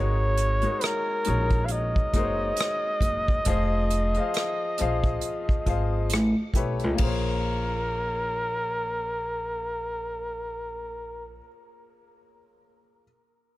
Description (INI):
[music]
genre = R&B, neo-soul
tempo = 68 BPM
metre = 4/4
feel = swing 58% on 16ths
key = Bb minor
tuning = A4 = 439 Hz
[part]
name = warm flugelhorn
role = melody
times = 0.0-11.3 s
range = Bb4 to F5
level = -29 LUFS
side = equal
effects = none
[part]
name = bright upright piano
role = accompaniment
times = 0.0-13.0 s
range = F3 to F5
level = -32 LUFS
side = left 5 dB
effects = none
[part]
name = upright bass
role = bass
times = 0.0-11.4 s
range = F1 to C#2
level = -28 LUFS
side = equal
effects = none
[part]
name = unplugged drum kit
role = drums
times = 0.4-7.2 s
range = hi-hat, kick drum, ride cymbal, rim click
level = -28 LUFS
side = equal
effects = none
[sound]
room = small room ambience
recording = none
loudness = -24 LUFS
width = side -16 dB against mid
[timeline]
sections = 0.0-7.0 A section; 7.0-10.5 B section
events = none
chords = 0.0 Ab9sus4; 3.5 Fm7; 6.1 A9; 7.0 Bbm9